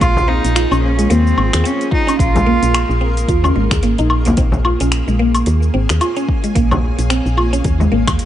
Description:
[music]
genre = organic downtempo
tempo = 110 BPM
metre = 4/4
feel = swing 57% on 16ths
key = Bb minor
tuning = A4 = 440 Hz
[part]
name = rich cello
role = melody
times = 0.0-3.2 s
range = C4 to F4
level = -20 LUFS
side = right 1 dB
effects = tape echo
[part]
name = granular cloud pad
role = sustained chords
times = 0.0-8.3 s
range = Bb3 to Ab5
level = -25 LUFS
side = right 1 dB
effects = built-in reverb, sidechain pumping
[part]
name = mallet-like synth pluck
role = arpeggios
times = 0.0-8.3 s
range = Ab3 to Ab4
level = -19 LUFS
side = equal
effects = wide subtle chorus, vintage 12-bit sampler grit, tape echo
[part]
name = woody FM bass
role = bass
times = 0.0-8.2 s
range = Ab1 to Eb2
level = -16 LUFS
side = equal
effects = sidechain pumping
[part]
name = deep house drum kit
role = drums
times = 0.0-8.3 s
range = finger snaps, hi-hat, shaker, woodblock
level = -22 LUFS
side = left 2 dB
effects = overdrive
[part]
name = electronic kick drum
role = drums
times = 0.0-8.2 s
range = none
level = -17 LUFS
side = equal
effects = overdrive
[part]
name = frame drum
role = percussion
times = 0.2-7.9 s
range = none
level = -23 LUFS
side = left 2 dB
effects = none
[sound]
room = light reverb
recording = dark, warm production, nothing above 10.6 kHz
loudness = -12 LUFS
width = side -12 dB against mid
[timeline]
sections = 0.0-8.3 A section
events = none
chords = 0.0 Bbm7

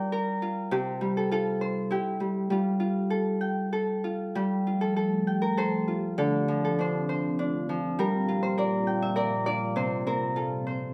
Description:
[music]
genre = children's music, lullaby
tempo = 100 BPM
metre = 3/4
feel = rubato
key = F major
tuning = A4 = 435 Hz
[part]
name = Celtic harp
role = melody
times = 0.0-10.9 s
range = C3 to G5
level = -28 LUFS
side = equal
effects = none
[part]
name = deep dark ambient pad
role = sustained chords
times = 4.8-10.9 s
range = Bb2 to G4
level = -35 LUFS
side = equal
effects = chorus, built-in reverb
[sound]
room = moderate recital hall reverb, RT60 1.4 s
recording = none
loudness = -28 LUFS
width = mono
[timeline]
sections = 0.0-4.4 A section; 4.4-10.9 A section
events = none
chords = 0.0 Gm7; 0.7 Csus4; 1.9 Em; 2.5 Fadd9; 6.2 Dm7; 8.0 Gm7; 9.8 F/C

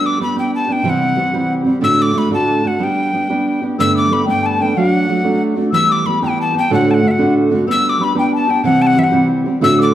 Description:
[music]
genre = celtic folk, Celtic jig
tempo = 123 BPM (dotted quarters)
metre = 6/8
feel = straight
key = G major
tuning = A4 = 437 Hz
[part]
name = breathy mid whistle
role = melody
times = 0.0-9.9 s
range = E5 to E6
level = -18 LUFS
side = left 2 dB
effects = none
[part]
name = fingerpicked steel-string acoustic guitar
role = accompaniment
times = 0.0-9.9 s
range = D2 to G4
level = -15 LUFS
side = right 2 dB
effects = none
[part]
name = mellow hollow wooden flute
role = second line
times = 3.8-9.9 s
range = F#5 to E6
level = -21 LUFS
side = left 6 dB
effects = none
[sound]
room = wet recital hall reverb, RT60 1.5 s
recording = dark, warm production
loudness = -13 LUFS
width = side -12 dB against mid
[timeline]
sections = 0.0-3.8 A section; 3.8-9.9 A section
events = none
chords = 0.0 G; 0.9 C; 1.8 D; 2.8 G; 3.8 Gadd9; 4.8 D/F#; 5.7 Em; 6.7 D; 7.7 G; 8.7 C

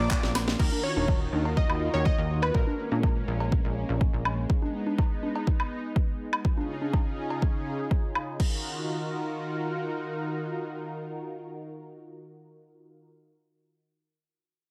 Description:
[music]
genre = progressive house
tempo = 123 BPM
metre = 4/4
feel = straight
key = Eb minor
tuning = A4 = 438 Hz
[part]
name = plucky unison lead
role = melody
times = 0.0-3.0 s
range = Bb4 to Eb5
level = -35 LUFS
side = equal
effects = sidechain pumping, delay
[part]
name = warm analog pad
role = sustained chords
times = 0.0-13.0 s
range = Db3 to Bb4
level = -36 LUFS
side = equal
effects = chorus, sidechain pumping
[part]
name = plucky analog bass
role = bass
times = 0.0-4.5 s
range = Eb1 to Bb2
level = -32 LUFS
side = equal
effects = sidechain pumping
[part]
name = electronic kick drum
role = drums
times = 0.1-8.5 s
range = none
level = -28 LUFS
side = equal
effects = overdrive
[part]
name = house drum kit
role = drums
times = 0.1-8.5 s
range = crash cymbal, handclaps, hi-hat, ride cymbal, snare drum, woodblock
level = -34 LUFS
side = equal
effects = sidechain pumping on cymbals, sidechain pumping on hats, sidechain pumping on perc
[part]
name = congas and cowbell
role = percussion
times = 0.7-7.4 s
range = none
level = -35 LUFS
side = equal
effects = sidechain pumping on perc
[sound]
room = digital ambience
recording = none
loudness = -28 LUFS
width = mono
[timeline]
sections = 0.6-8.4 A section; 8.4-12.3 B section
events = drum fill 0.2-0.6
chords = 0.0 Bb; 0.6 Ebmadd9; 2.5 Bbm7; 4.5 Abm; 6.4 Dbadd9; 8.4 Ebmadd9

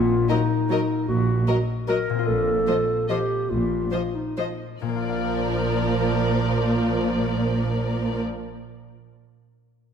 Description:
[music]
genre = classical, orchestral ballroom waltz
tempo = 130-162 BPM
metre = 3/4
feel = rubato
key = Bb major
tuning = A4 = 440 Hz
[part]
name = mellow clarinet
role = second line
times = 0.0-8.2 s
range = Bb3 to Bb4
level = -26 LUFS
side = equal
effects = none
[part]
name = concert harp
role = arpeggios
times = 0.0-9.0 s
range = Bb2 to F5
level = -30 LUFS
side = left 11 dB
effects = none
[part]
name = dark symphonic cello section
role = bass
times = 0.0-8.2 s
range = Bb2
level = -29 LUFS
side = right 2 dB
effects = none
[part]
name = warm studio double bass section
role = bass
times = 0.0-8.2 s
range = Bb1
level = -28 LUFS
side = right 4 dB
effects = none
[part]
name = rich chamber violin section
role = melody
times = 0.3-8.2 s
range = D5 to Eb5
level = -34 LUFS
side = left 5 dB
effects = none
[part]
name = warm chamber violin section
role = second line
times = 0.3-8.2 s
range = Bb4 to C5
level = -31 LUFS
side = left 2 dB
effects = none
[part]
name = warm studio viola section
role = accompaniment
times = 0.3-8.2 s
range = F3 to Gb3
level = -30 LUFS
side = right 3 dB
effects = none
[sound]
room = moderate scoring stage reverb, RT60 2.0 s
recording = none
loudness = -21 LUFS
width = side -7 dB against mid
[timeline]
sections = 0.0-4.8 A section; 4.8-7.4 B section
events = slowing down 1.7-4.8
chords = 0.0 Ebm/Bb; 2.3 F7/Bb; 4.8 Bb

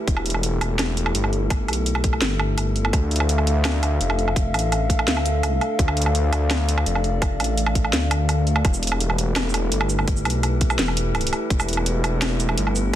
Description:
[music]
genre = half-time drum and bass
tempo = 168 BPM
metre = 4/4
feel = half-time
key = E phrygian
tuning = A4 = 439 Hz
[part]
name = dark analog pad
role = sustained chords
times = 0.0-13.0 s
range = D4 to F5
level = -28 LUFS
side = left 3 dB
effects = chorus, sidechain pumping
[part]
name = metallic inharmonic drone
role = texture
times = 0.0-13.0 s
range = A3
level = -30 LUFS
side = right 2 dB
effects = chorus, built-in reverb
[part]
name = dark detuned saw bass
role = bass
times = 0.1-13.0 s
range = E1 to D2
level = -22 LUFS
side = equal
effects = none
[part]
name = drum and bass drum kit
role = drums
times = 0.1-13.0 s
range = hi-hat, shaker, snare drum, woodblock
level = -24 LUFS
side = right 1 dB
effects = studio reverb
[part]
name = electronic kick drum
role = drums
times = 0.1-13.0 s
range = none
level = -21 LUFS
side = equal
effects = studio reverb
[sound]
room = little or no reverb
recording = dense, heavily limited modern master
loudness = -19 LUFS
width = side -12 dB against mid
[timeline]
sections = 0.0-13.0 A section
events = none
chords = 0.0 Em; 2.9 Dm; 8.6 Em

